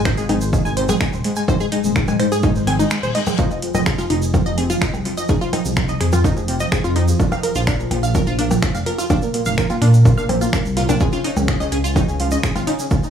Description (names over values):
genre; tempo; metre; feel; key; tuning
melodic techno; 126 BPM; 4/4; straight; F minor; A4 = 439 Hz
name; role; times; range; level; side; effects
dark detuned saw bass; bass; 0.0-13.0 s; Eb1 to Bb2; -19 LUFS; equal; sidechain pumping
fat analog lead; melody; 0.1-12.9 s; F3 to Ab4; -23 LUFS; equal; wide subtle chorus, sidechain pumping, tape echo
wide unison pluck; arpeggios; 0.1-12.7 s; D4 to Ab5; -24 LUFS; equal; sidechain pumping, dub echo
electronic kick drum; drums; 0.1-13.0 s; none; -20 LUFS; equal; none
techno drum kit; drums; 0.1-12.8 s; finger snaps, hi-hat, percussion blips, woodblock; -25 LUFS; left 2 dB; analog delay
egg shaker; percussion; 0.1-13.1 s; none; -34 LUFS; right 4 dB; none
reverse cymbal; sound effects; 2.6-3.4 s; none; -31 LUFS; left 6 dB; none
room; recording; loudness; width
light reverb; echo-heavy mix, studio ambience; -16 LUFS; side -8 dB against mid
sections
0.0-13.1 A section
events
reverse cymbal 2.6-3.4; break 2.9-3.4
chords
0.0 Ab5; 3.4 F7(no3); 7.2 Bb5; 11.0 Dbsus2